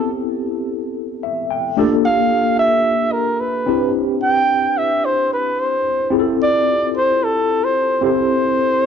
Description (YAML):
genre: pop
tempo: 110 BPM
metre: 4/4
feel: straight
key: C major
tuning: A4 = 443 Hz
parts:
  - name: breathy flugelhorn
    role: melody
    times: 0.0-8.9 s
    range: A4 to G5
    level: -17 LUFS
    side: right 1 dB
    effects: tube saturation
  - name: tine electric piano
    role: accompaniment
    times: 0.0-8.9 s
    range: A3 to G5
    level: -19 LUFS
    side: left 2 dB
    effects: medium stereo tremolo, lush chorus
room: light reverb, small room ambience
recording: dry, close 1970s-style studio recording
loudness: -15 LUFS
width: side -7 dB against mid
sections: 0.0-8.9 A section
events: tine electric piano fill 1.0-1.8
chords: 0.0 Am9; 1.8 Gm9; 3.7 Cmaj7; 6.1 Fmaj7; 8.0 Am7